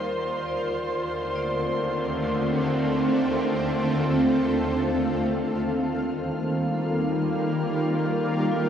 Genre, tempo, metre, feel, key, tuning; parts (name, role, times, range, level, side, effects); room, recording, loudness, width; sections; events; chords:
ambient; 67 BPM; 3/4; straight; Eb lydian; A4 = 442 Hz
shimmering ambient pad; sustained chords; 0.0-8.7 s; Eb2 to A4; -24 LUFS; equal; chorus, built-in reverb
vibraphone with hard mallets; arpeggios; 0.0-8.7 s; F4 to F5; -33 LUFS; equal; diffuse ambient delay
muted studio violin section; texture; 0.0-8.7 s; C5 to F6; -34 LUFS; equal
overtone-sweeping drone; drone; 5.6-8.7 s; Eb3; -30 LUFS; right 1 dB; chorus, built-in reverb, phaser
wet cathedral reverb, RT60 6.6 s; in a vast, echoing space; -23 LUFS; side -8 dB against mid
0.0-4.9 A section; 4.9-8.7 B section
0.0 F6/Eb; 4.9 Ebadd9